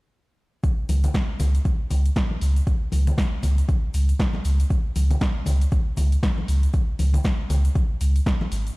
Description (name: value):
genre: deep house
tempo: 118 BPM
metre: 4/4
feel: swing 59% on 16ths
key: unclear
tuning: A4 = 440 Hz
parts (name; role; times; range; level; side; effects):
- deep house drum kit; drums; 0.6-8.8 s; hi-hat, snare drum; -31 LUFS; equal; overdrive
- electronic kick drum; drums; 0.6-8.4 s; none; -22 LUFS; equal; overdrive
- tube shaker; percussion; 0.6-8.8 s; none; -46 LUFS; left 1 dB; none
- warm sub bass; bass; 0.9-8.7 s; G#1 to C#2; -19 LUFS; equal; tube saturation, sidechain pumping
- congas; percussion; 0.9-8.5 s; none; -32 LUFS; left 2 dB; none
room: digital ambience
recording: played on a big sound system in a bare room, stone room reverb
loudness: -20 LUFS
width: side -23 dB against mid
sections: 0.6-8.8 A section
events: none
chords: none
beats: | 0.64 1.14 1.65 2.16 | 2.67 3.18 3.69 4.20 | 4.70 5.21 5.72 6.23 | 6.74 7.25 7.75 8.26